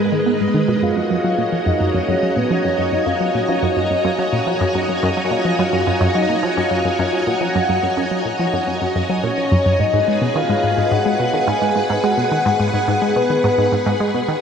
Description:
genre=ambient, sequencer-driven space music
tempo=107 BPM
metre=4/4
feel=straight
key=unclear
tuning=A4 = 441 Hz
part: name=string machine, full ensemble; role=sustained chords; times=0.0-14.4 s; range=G#3 to A#5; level=-20 LUFS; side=equal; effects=ensemble chorus
part: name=tight sequenced synth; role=riff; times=0.0-14.3 s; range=F#2 to B3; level=-20 LUFS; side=equal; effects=chorus, ping-pong delay
part: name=soft octave-layered synth lead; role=melody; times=0.8-14.0 s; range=B4 to G#5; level=-20 LUFS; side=left 1 dB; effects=chorus, phaser, ping-pong delay
room=wet huge ambient reverb, RT60 8.6 s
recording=dreamy mix soaked in reverb, cassette tape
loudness=-15 LUFS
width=side -7 dB against mid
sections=0.0-14.4 A section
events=filter sweep on synth arpeggio sound 0.0-14.4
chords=0.0 G#m; 0.8 F#maj7; 9.8 G#m7

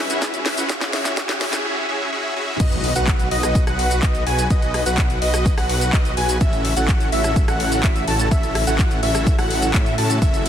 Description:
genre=EDM, festival progressive house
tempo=126 BPM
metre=4/4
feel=straight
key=unclear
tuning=A4 = 440 Hz
part: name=rich studio string section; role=sustained chords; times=0.0-1.6 s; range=G#3 to E5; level=-29 LUFS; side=left 3 dB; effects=sidechain pumping
part: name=dense compressed supersaw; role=riff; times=0.0-10.5 s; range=C#4 to A5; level=-24 LUFS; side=equal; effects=cassette tape, sidechain pumping, tape echo
part: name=riser and impact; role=sound effects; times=0.0-4.5 s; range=none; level=-31 LUFS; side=equal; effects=none
part: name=house drum kit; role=drums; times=0.1-10.5 s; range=crash cymbal, handclaps, hi-hat, ride cymbal, rim click, shaker, snare drum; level=-25 LUFS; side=left 1 dB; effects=overdrive
part: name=electronic kick drum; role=drums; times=0.2-10.3 s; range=none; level=-18 LUFS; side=equal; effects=overdrive, high-pass filter on kick
part: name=wide unison lead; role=arpeggios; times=2.6-10.5 s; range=D#5 to A5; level=-24 LUFS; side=equal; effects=sidechain pumping, tape echo
part: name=detuned saw bass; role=bass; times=2.6-10.5 s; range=F#1 to A2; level=-23 LUFS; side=equal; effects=sidechain pumping
room=light reverb, digital ambience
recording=dense, heavily limited modern master, high-pass filter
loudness=-17 LUFS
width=side -10 dB against mid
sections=0.0-2.6 A section; 2.6-10.5 B section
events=build-up 0.0-2.6; drum fill 0.0-1.6; riser 0.0-1.6; drop 2.6-10.5; impact 2.6-4.5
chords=0.0 C#m7; 2.6 B; 6.4 A6

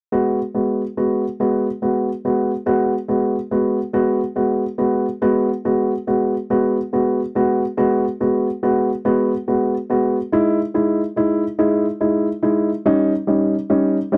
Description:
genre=pop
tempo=47 BPM (dotted quarters)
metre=6/8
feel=straight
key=G# minor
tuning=A4 = 442 Hz
part: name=warm upright piano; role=accompaniment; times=0.1-14.2 s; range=G3 to F#4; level=-19 LUFS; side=equal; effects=none
room=light reverb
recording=dry, close 1970s-style studio recording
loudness=-19 LUFS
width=mono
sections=0.1-5.2 A section; 5.2-14.2 B section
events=none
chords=0.1 G#m7; 10.3 Emaj7; 12.9 D#7

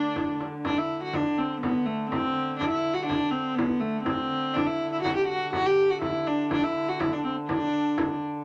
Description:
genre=medieval dance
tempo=123 BPM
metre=2/4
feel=straight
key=D mixolydian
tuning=A4 = 441 Hz
part: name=warm viola da gamba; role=melody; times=0.0-8.2 s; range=A3 to G4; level=-28 LUFS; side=equal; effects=none
part: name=dark hurdy-gurdy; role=drone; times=0.0-8.4 s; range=D3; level=-39 LUFS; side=equal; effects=none
part: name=frame drum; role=percussion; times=0.2-8.3 s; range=none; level=-33 LUFS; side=equal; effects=none
room=moderate studio reverb, RT60 0.5 s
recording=none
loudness=-27 LUFS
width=mono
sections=0.6-8.4 A section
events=none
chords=none

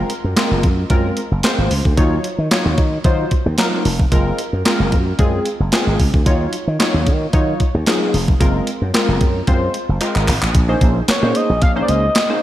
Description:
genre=early-eighties boogie funk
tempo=112 BPM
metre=4/4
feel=straight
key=Eb dorian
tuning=A4 = 440 Hz
part: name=funky polysynth comp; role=accompaniment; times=0.0-12.4 s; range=Gb3 to Db5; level=-20 LUFS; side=equal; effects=chorus
part: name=slap bass with an envelope filter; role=bass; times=0.0-12.1 s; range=F1 to Eb3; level=-18 LUFS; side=equal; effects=none
part: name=clean 12-bit digital drum machine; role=drums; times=0.1-12.3 s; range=handclaps, hi-hat, kick drum, snare drum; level=-17 LUFS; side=equal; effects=none
part: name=expressive synth lead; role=melody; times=11.1-12.4 s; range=Db5 to F5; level=-18 LUFS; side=equal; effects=chorus
room=light reverb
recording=none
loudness=-14 LUFS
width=side -13 dB against mid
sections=0.0-10.5 A section; 10.5-12.4 B section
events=drum fill 10.0-10.5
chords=0.0 Gbmaj9#11; 2.0 Ebm9; 4.1 Gbmaj9#11; 6.3 Ebm9; 8.4 Gbmaj9#11; 10.5 Bbm11

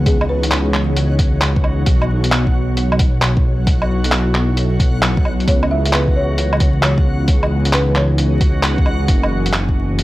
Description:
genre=future garage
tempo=133 BPM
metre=4/4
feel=swing 66% on 16ths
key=C# minor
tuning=A4 = 440 Hz
part: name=ethereal airy pad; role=sustained chords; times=0.0-10.0 s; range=E3 to C#5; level=-24 LUFS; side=equal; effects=ensemble chorus, built-in reverb, phaser, sidechain pumping
part: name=dark detuned saw bass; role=bass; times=0.0-10.0 s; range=F#1 to C#2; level=-17 LUFS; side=equal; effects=tube saturation, sidechain pumping
part: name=backwards swelling texture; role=texture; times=0.0-10.0 s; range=F#4 to F#5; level=-30 LUFS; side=equal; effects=built-in reverb
part: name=folk marimba with soft mallets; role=melody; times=0.1-0.9, 5.5-8.3 s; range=G#4 to E5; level=-24 LUFS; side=equal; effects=analog delay
part: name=electronic kick drum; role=drums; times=0.1-9.7 s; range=none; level=-16 LUFS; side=equal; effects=studio reverb
part: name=lo-fi sampler-style drum kit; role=drums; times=0.1-10.0 s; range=handclaps, hi-hat, woodblock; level=-19 LUFS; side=equal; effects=studio reverb
room=little or no reverb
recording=dry, gritty hardware recording, vinyl crackle, faint mains hum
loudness=-13 LUFS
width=side -17 dB against mid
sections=0.0-10.0 A section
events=none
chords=0.0 C#m9; 1.9 B9sus4; 5.5 C#m9; 9.1 F#m9

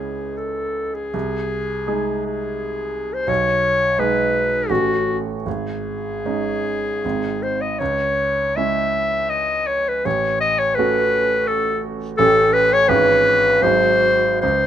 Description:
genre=classical, romantic duo for clarinet and grand piano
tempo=71-88 BPM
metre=3/4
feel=rubato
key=unclear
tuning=A4 = 440 Hz
part: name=clear clarinet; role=melody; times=0.0-14.7 s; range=F#4 to E5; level=-18 LUFS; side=left 2 dB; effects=none
part: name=clear grand piano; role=accompaniment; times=0.0-14.7 s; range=G#1 to G#4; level=-23 LUFS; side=right 5 dB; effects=none
room=light reverb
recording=minimal, uncompressed stereo recording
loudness=-17 LUFS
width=side -10 dB against mid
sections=0.0-14.7 A section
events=none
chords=0.0 C#m; 1.1 G#/B#; 3.3 G#m/B; 4.7 F#m/A; 5.5 G#sus4; 7.0 G#; 7.8 C#m; 10.1 F#m/A; 12.2 A7; 12.9 C#m/G#; 13.6 G#7

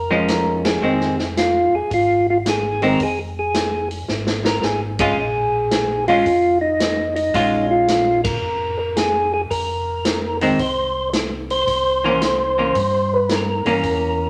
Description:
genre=soul jazz organ trio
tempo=111 BPM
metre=4/4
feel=swing 67% on 8ths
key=F minor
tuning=A4 = 440 Hz
part: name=percussive tonewheel organ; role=melody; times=0.0-14.3 s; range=Eb4 to C5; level=-21 LUFS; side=equal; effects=slow rotary speaker
part: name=mellow tonewheel organ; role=bass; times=0.0-14.3 s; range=F1 to G2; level=-31 LUFS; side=equal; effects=slow rotary speaker
part: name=vintage hollow-body jazz guitar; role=accompaniment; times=0.1-14.3 s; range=Eb3 to F4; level=-22 LUFS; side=equal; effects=none
part: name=swinging big-band drum kit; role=drums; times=0.3-14.0 s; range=hi-hat, kick drum, ride cymbal, snare drum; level=-27 LUFS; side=equal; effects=none
room=wet studio reverb, RT60 0.9 s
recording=none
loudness=-19 LUFS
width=mono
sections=0.0-14.3 A section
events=band accent 0.6, 4.9, 8.2; drum fill 4.1-4.6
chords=0.0 Bbm7; 0.8 Fm; 5.2 Bbm7; 9.5 F5; 11.7 C7b9

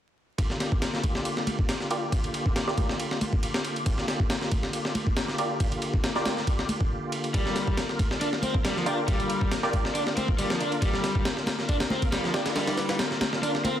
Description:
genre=breakbeat, breaks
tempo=138 BPM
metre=4/4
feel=swing 54% on 16ths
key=G minor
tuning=A4 = 440 Hz
part: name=bright tonewheel organ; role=sustained chords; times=0.4-13.8 s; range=D3 to Bb4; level=-32 LUFS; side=equal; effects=chorus vibrato, slow rotary speaker, sidechain pumping
part: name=breakbeat sampler-style drum kit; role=drums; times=0.4-13.8 s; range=kick drum, ride cymbal, snare drum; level=-27 LUFS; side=equal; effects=studio reverb
part: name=congas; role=percussion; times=1.0-13.7 s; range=none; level=-34 LUFS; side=equal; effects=none
part: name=orchestra-hit-like synth stab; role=stabs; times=1.9-12.4 s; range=F4 to D5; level=-32 LUFS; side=right 1 dB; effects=built-in reverb, ping-pong delay
part: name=raw garage guitar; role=riff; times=7.3-13.8 s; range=F3 to D4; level=-30 LUFS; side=left 1 dB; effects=overdrive, ping-pong delay
room=light reverb, digital ambience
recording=dense, heavily limited modern master, vinyl crackle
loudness=-24 LUFS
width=side -11 dB against mid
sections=0.4-13.8 A section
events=filter sweep on synth stab 0.4-13.8; kick drops out 13.4-13.8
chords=0.4 Gm7

